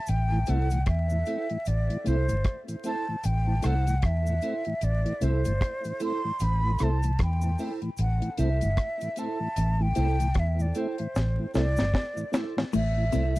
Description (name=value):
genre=roots reggae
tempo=76 BPM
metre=4/4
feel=swing 60% on 16ths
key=A dorian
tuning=A4 = 440 Hz
part: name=breathy concert flute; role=melody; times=0.0-13.4 s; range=C5 to C6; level=-32 LUFS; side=equal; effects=tape echo
part: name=vintage muted fingered electric bass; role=bass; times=0.1-13.4 s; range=G1 to E2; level=-25 LUFS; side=equal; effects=tube saturation
part: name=deep reggae drum kit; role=drums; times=0.1-13.4 s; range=crash cymbal, hi-hat, kick drum, rim click, snare drum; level=-29 LUFS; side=equal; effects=none
part: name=cabasa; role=percussion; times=0.1-13.4 s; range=none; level=-48 LUFS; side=right 2 dB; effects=none
part: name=mellow tonewheel organ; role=accompaniment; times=0.3-13.4 s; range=A2 to E4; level=-34 LUFS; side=left 1 dB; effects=chorus vibrato, slow rotary speaker, tape echo
part: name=clean electric guitar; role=accompaniment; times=0.5-13.3 s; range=E4 to C5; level=-35 LUFS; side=right 5 dB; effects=ensemble chorus, tape echo
part: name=semi-hollow electric guitar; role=riff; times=12.7-13.4 s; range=A2 to C3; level=-29 LUFS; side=left 4 dB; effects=none
room=little or no reverb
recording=dry, close 1970s-style studio recording, vinyl crackle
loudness=-24 LUFS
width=side -18 dB against mid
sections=0.0-12.7 A section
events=drum fill 11.2-12.7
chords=0.0 Am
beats=| 0.07 0.86 1.66 2.45 | 3.24 4.03 4.82 5.61 | 6.40 7.19 7.99 8.78 | 9.57 10.36 11.15 11.94 | 12.73